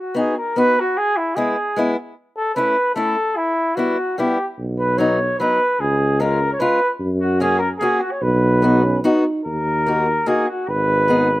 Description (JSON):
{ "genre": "alpine folk, alpine dance band", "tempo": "148 BPM", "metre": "3/4", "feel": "rubato", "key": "B major", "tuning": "A4 = 440 Hz", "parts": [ { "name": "warm flugelhorn", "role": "melody", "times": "0.0-11.4 s", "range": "E4 to C#5", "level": "-19 LUFS", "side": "equal", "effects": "none" }, { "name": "fingerpicked acoustic archtop guitar", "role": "accompaniment", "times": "0.1-11.3 s", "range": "F#3 to G#4", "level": "-20 LUFS", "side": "left 2 dB", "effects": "slapback echo" }, { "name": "warm tuba", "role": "bass", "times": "4.6-11.4 s", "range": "G#1 to F#2", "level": "-20 LUFS", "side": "equal", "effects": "none" }, { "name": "warm euphonium", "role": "second line", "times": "8.6-9.4 s", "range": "B3 to D#4", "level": "-22 LUFS", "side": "right 3 dB", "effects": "slapback echo" } ], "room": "little or no reverb", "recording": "recorded outdoors, with no room sound", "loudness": "-16 LUFS", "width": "side -16 dB against mid", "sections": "0.0-9.5 A section; 9.5-11.4 B section", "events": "none", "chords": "0.0 B; 1.0 E; 2.2 A; 3.4 Em; 4.6 B; 5.8 C#; 7.0 F#; 8.2 B; 9.5 D#m; 10.7 G#m" }